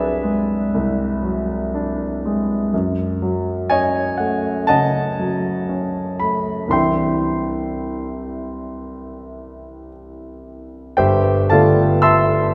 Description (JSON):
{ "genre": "classical, impressionist solo piano", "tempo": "54-64 BPM", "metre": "4/4", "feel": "rubato", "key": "C lydian", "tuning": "A4 = 438 Hz", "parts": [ { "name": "warm grand piano", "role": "solo", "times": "0.0-12.5 s", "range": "G1 to E6", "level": "-20 LUFS", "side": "equal", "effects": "none" } ], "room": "wet concert hall reverb, RT60 2.3 s", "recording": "recorded in a church or concert hall", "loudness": "-19 LUFS", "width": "mono", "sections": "0.0-11.0 A section; 11.0-12.5 B section", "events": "none", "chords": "0.0 E9/C; 2.7 F#m6; 6.7 Cadd9; 11.0 G9", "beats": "0.74 1.74 | 2.73 3.70 4.69 5.70 | 6.72 7.80 8.87 9.92 | 10.99 12.04" }